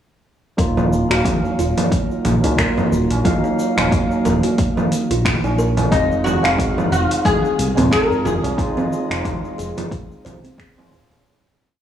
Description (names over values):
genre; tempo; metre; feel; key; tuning
organic downtempo; 90 BPM; 4/4; swing 56% on 16ths; Eb dorian; A4 = 439 Hz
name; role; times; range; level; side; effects
tine electric piano; accompaniment; 0.6-11.2 s; Gb3 to F5; -22 LUFS; right 2 dB; lush chorus, sidechain pumping, analog delay, shimmer reverb
kalimba; arpeggios; 0.6-11.1 s; C4 to F5; -25 LUFS; right 1 dB; low-pass filter, analog delay, shimmer reverb
smooth synth bass; bass; 0.6-11.2 s; Eb1 to Db2; -21 LUFS; equal; sidechain pumping
deep house drum kit; drums; 0.6-11.2 s; congas, finger snaps, hi-hat, shaker; -22 LUFS; equal; overdrive
electronic kick drum; drums; 0.6-10.7 s; none; -21 LUFS; equal; overdrive
tabla; percussion; 0.8-11.2 s; none; -29 LUFS; right 2 dB; none
oud; melody; 5.9-10.5 s; Eb4 to Bb4; -20 LUFS; left 2 dB; analog delay, shimmer reverb
room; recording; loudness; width
moderate echo chamber reverb, RT60 1.8 s, digital ambience; dry, gritty hardware recording, small room ambience; -16 LUFS; side -10 dB against mid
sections
0.6-11.3 groove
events
filter sweep on kalimba 0.6-11.3; fade-out 7.7-11.3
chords
0.6 Ebmadd9; 5.9 Fm7